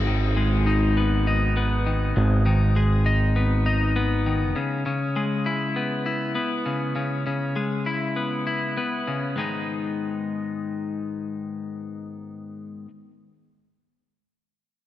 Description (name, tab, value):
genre	rock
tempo	100 BPM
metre	4/4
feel	straight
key	G# minor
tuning	A4 = 440 Hz
part	twelve-string electric guitar	arpeggios	0.0-12.9 s	G#2 to E4	-25 LUFS	left 3 dB	digital delay
part	growling picked electric bass	bass	0.0-4.5 s	G#1	-21 LUFS	right 1 dB	overdrive
room	moderate scoring stage reverb, RT60 1.8 s, small room reverb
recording	none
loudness	-22 LUFS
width	side -13 dB against mid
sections	0.0-9.4 A section; 9.4-11.8 B section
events	none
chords	0.0 G#m; 4.6 C#m7; 9.4 G#m